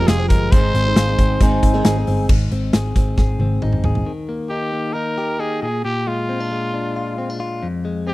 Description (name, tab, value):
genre	jangly indie pop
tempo	135 BPM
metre	4/4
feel	straight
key	unclear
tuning	A4 = 441 Hz
part	growling trumpet	melody	0.0-8.1 s	F4 to C5	-23 LUFS	equal	slapback echo
part	picked steel-string acoustic guitar	accompaniment	0.0-2.3 s	F2 to Ab4	-23 LUFS	right 5 dB	tube saturation
part	direct-recorded clean electric guitar	arpeggios	0.0-8.1 s	F2 to Ab4	-24 LUFS	left 2 dB	slapback echo
part	vintage muted picked electric bass	bass	0.0-4.0 s	F1 to Ab1	-20 LUFS	equal	none
part	big rock drum kit	drums	0.1-4.1 s	crash cymbal, hi-hat, kick drum, snare drum, toms	-17 LUFS	equal	none
part	mellow hollow alto ocarina	second line	1.0-2.3 s	F5 to Ab5	-27 LUFS	left 4 dB	none
room	studio ambience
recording	dry, close 1970s-style studio recording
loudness	-16 LUFS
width	side -18 dB against mid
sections	0.0-2.3 A section; 2.3-4.1 B section; 4.1-8.1 C section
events	drum fill 3.2-4.1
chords	0.0 Fmadd9; 0.5 Ab; 4.1 Eb; 5.6 Bb7; 7.6 Fm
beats	0.08 | 0.52 0.96 1.41 1.85 | 2.29 2.74 3.18 3.62 | 4.07 4.51 4.96 5.40 | 5.84 6.29 6.73 7.18 | 7.62 8.06